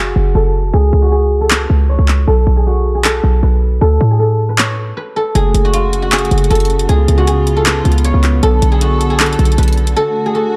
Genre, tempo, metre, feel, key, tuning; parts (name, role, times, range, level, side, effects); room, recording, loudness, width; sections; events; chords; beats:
hip hop, trap; 156 BPM; 4/4; half-time; F# harmonic minor; A4 = 438 Hz
guzheng; melody; 0.0-10.6 s; E#4 to C#5; -19 LUFS; equal; low-pass filter
short 808-style bass; bass; 0.0-10.0 s; F#1 to A2; -15 LUFS; equal
trap drum kit; drums; 1.5-10.0 s; handclaps, hi-hat; -19 LUFS; equal; overdrive
dark studio string section; sustained chords; 5.4-10.6 s; C#3 to A4; -22 LUFS; equal
digital ambience; dark, warm production; -13 LUFS; mono
0.0-10.6 A section
break 0.0-5.4, 10.0-10.6; filter sweep on guzheng 0.0-5.4
0.0 F#m; 0.7 C#7sus4; 2.3 F#madd11/B; 3.8 N.C.; 5.4 F#m; 6.9 C#7; 8.4 Bm7; 10.0 D
0.35 | 0.74 1.12 1.51 1.89 | 2.27 2.66 3.04 3.43 | 3.81 4.20 4.58 4.97 | 5.35 5.74 6.12 6.51 | 6.89 7.28 7.66 8.04 | 8.43 8.81 9.20 9.58 | 9.97 10.35